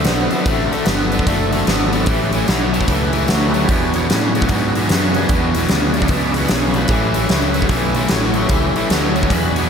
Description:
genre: blues rock power trio and southern rock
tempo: 149 BPM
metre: 4/4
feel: swing 63% on 8ths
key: unclear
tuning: A4 = 440 Hz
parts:
  - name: tonewheel organ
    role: sustained chords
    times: 0.0-9.7 s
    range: C4 to B5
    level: -24 LUFS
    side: right 2 dB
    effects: slow rotary speaker, overdrive, chorus vibrato
  - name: raw garage guitar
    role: riff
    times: 0.0-9.7 s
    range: E2 to B3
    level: -18 LUFS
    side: left 1 dB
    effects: overdrive, slapback echo
  - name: fuzz fingered electric bass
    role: bass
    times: 0.0-9.7 s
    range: F#1 to A2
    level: -21 LUFS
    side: equal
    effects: overdrive
  - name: huge arena drum kit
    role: drums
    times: 0.0-9.6 s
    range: hi-hat, kick drum, snare drum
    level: -18 LUFS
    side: equal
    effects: none
room: moderate lush hall reverb, RT60 2.0 s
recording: big arena sound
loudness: -14 LUFS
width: side -7 dB against mid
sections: 0.0-9.7 A section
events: tonewheel organ fill 0.0-0.5, 5.7-6.9, 8.9-9.7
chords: 0.0 D7; 2.1 A7; 3.7 E7; 6.9 A7

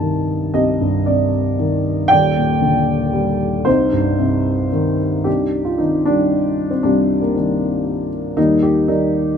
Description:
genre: classical, lyrical solo piano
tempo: 115 BPM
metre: 3/4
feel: rubato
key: C minor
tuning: A4 = 438 Hz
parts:
  - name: dark upright piano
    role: solo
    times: 0.0-9.4 s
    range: Eb1 to A5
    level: -15 LUFS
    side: equal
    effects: none
room: light reverb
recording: close, detailed microphones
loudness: -15 LUFS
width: side -7 dB against mid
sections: 0.0-5.3 A section; 5.3-9.4 B section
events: none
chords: 0.0 Cmadd9; 2.1 Ebmaj7; 3.7 Cm; 5.3 Cmadd9; 8.4 Ebmaj7

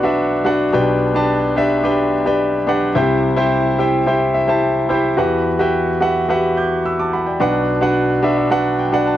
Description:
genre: pop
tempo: 108 BPM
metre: 4/4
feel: straight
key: E minor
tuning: A4 = 443 Hz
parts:
  - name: warm concert grand piano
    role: solo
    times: 0.0-9.2 s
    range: B1 to G6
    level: -14 LUFS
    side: equal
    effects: none
room: little or no reverb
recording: dry, close 1970s-style studio recording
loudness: -14 LUFS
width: side -12 dB against mid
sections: 0.0-9.2 A section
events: grand piano fill 4.1-5.2, 8.0-9.2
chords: 0.0 Bm; 0.7 G/B; 3.0 C; 5.2 Emadd9; 7.4 Bm

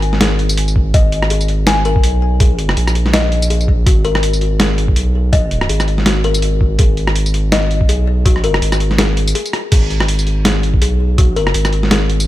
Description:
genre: half-time drum and bass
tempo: 164 BPM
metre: 4/4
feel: swing 57% on 16ths, half-time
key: G# minor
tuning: A4 = 440 Hz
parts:
  - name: saturated sub bass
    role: bass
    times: 0.0-12.3 s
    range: G#1 to B1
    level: -15 LUFS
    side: equal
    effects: tube saturation
  - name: boom bap sampler-style drum kit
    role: drums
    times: 0.0-12.3 s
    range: crash cymbal, hi-hat, rim click, snare drum, tambourine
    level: -18 LUFS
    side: equal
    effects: none
  - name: kalimba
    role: arpeggios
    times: 0.2-12.3 s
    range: F#4 to G#5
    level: -21 LUFS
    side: left 6 dB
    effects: vintage 12-bit sampler grit, ping-pong delay
  - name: electronic kick drum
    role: drums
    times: 0.8-11.3 s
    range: none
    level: -13 LUFS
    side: equal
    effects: none
room: little or no reverb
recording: none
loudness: -12 LUFS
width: side -15 dB against mid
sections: 0.0-12.3 A section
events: break 9.4-9.7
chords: 0.0 G#5

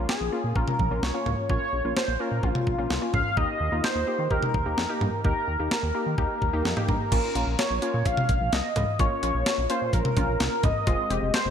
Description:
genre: synth-pop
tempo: 128 BPM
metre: 4/4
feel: straight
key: Bb dorian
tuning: A4 = 440 Hz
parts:
  - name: warbly dusty pluck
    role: accompaniment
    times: 0.0-11.4 s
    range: Ab3 to G4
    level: -32 LUFS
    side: left 2 dB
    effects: chorus
  - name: chorused synth bass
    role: bass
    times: 0.0-11.5 s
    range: F1 to Eb3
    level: -29 LUFS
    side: equal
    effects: none
  - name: octave-doubled lead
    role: melody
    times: 0.1-11.5 s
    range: F4 to F5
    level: -27 LUFS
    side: equal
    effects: chorus, phaser, digital delay
  - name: clean 12-bit digital drum machine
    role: drums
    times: 0.1-11.4 s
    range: cowbell, crash cymbal, hi-hat, kick drum, snare drum, toms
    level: -27 LUFS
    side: equal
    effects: none
  - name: swell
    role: sound effects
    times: 6.3-7.1 s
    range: none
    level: -41 LUFS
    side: left 1 dB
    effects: none
room: moderate lush hall reverb, RT60 2.4 s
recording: bright 1980s-style digital production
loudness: -23 LUFS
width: side -8 dB against mid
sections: 0.0-7.1 A section; 7.1-11.5 B section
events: none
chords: 0.0 Bbm; 3.4 Eb; 7.1 Bbm; 10.9 Fm7

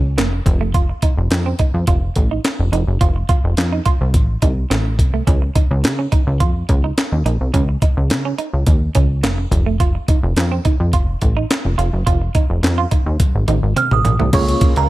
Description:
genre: early-eighties boogie funk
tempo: 106 BPM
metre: 4/4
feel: straight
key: unclear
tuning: A4 = 440 Hz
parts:
  - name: plucky analog bass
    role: bass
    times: 0.0-14.9 s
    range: F1 to Db3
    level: -17 LUFS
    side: equal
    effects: none
  - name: semi-hollow electric guitar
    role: riff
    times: 0.2-14.3 s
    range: A3 to F4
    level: -24 LUFS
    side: right 8 dB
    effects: lush chorus
  - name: breakbeat sampler-style drum kit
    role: drums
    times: 0.2-14.9 s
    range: crash cymbal, handclaps, hi-hat, kick drum, snare drum, toms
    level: -17 LUFS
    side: equal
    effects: none
  - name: glassy synth bell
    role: melody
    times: 13.8-14.9 s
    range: Bb5 to F6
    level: -19 LUFS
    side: right 7 dB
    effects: chorus
  - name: tine electric piano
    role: accompaniment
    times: 14.3-14.7 s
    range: Bb3 to Db5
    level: -20 LUFS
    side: equal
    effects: medium stereo tremolo
  - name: lush unison pad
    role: sustained chords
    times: 14.3-14.9 s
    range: Db3 to F4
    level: -27 LUFS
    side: right 2 dB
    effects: chorus
room: little or no reverb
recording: none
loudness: -14 LUFS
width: side -17 dB against mid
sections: 0.0-14.3 A section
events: drum fill 13.2-14.3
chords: 0.5 F7; 5.3 Db; 9.5 F7; 14.3 Db6

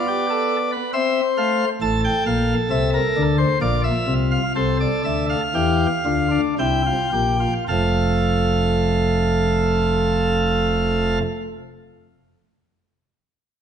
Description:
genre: classical, baroque-style 3-part fugue for pipe organ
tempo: 52-70 BPM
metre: 3/4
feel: straight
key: F major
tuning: A4 = 441 Hz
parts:
  - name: chamber organ, principal chorus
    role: solo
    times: 0.0-11.2 s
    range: F1 to A5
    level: -18 LUFS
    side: equal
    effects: none
room: wet recital hall reverb, RT60 1.5 s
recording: nothing above 10.9 kHz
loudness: -18 LUFS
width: side -8 dB against mid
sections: 0.0-7.7 A section; 7.7-11.1 B section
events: slowing down 0.5-7.7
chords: 0.0 G; 0.9 C; 1.8 Am; 3.6 Bb; 4.6 F/C; 6.6 C7; 7.7 F

